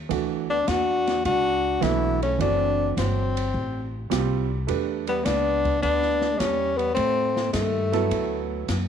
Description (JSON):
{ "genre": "jazz, small-group swing and bop", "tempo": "105 BPM", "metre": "4/4", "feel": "swing 69% on 8ths", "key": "D major", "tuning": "A4 = 438 Hz", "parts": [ { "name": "upright bass", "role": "bass", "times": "0.0-8.9 s", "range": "F#1 to A2", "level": "-28 LUFS", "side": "equal", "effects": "none" }, { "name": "warm concert grand piano", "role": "accompaniment", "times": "0.1-8.7 s", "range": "E3 to B4", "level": "-27 LUFS", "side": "right 12 dB", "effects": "none" }, { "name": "open jazz drum kit", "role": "drums", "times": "0.1-8.9 s", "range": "hi-hat, kick drum, ride cymbal, snare drum", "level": "-32 LUFS", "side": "equal", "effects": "none" }, { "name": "warm tenor saxophone", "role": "melody", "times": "0.5-8.5 s", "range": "A3 to F#4", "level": "-24 LUFS", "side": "left 4 dB", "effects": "none" }, { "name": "warm trombone", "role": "second line", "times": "0.5-8.1 s", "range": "Eb3 to D4", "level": "-31 LUFS", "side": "right 11 dB", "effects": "none" } ], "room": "light reverb, studio reverb", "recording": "1960s-style stereo", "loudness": "-21 LUFS", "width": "side -8 dB against mid", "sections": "0.1-8.9 A section", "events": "none", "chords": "0.1 D69; 2.4 F#m7b5; 3.5 F; 4.7 Em7; 7.0 Am7b5; 8.1 D" }